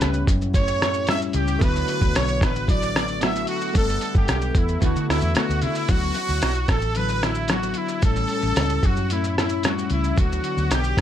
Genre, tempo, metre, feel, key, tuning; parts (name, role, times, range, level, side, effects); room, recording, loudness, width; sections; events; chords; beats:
indie pop, bedroom pop; 112 BPM; 4/4; straight; D major; A4 = 441 Hz
growling trumpet; melody; 0.0-11.0 s; E4 to E5; -26 LUFS; right 1 dB; ensemble chorus, slapback echo, plate reverb
chorused retro synth keys; accompaniment; 0.0-5.9 s; A3 to F#5; -32 LUFS; right 6 dB; cassette tape, plate reverb
picked steel-string acoustic guitar; accompaniment; 0.0-11.0 s; A2 to A4; -27 LUFS; left 6 dB; analog chorus, warbly pitch drift
vintage muted fingered electric bass; bass; 0.0-11.0 s; G1 to D3; -25 LUFS; equal
lo-fi sampler-style drum kit; drums; 0.0-11.0 s; hi-hat, kick drum, rim click, shaker; -22 LUFS; equal
light reverb; dark, warm production; -19 LUFS; side -10 dB against mid
0.0-5.9 A section; 5.9-11.0 B section
0.0 A7; 1.6 D69; 3.8 Gmaj9; 4.8 D6; 5.9 D69; 8.0 A7; 10.2 D69
0.01 0.55 1.08 | 1.61 2.15 2.68 3.22 | 3.75 4.28 4.82 5.35 | 5.89 6.42 6.96 7.49 | 8.03 8.56 9.10 9.63 | 10.17 10.71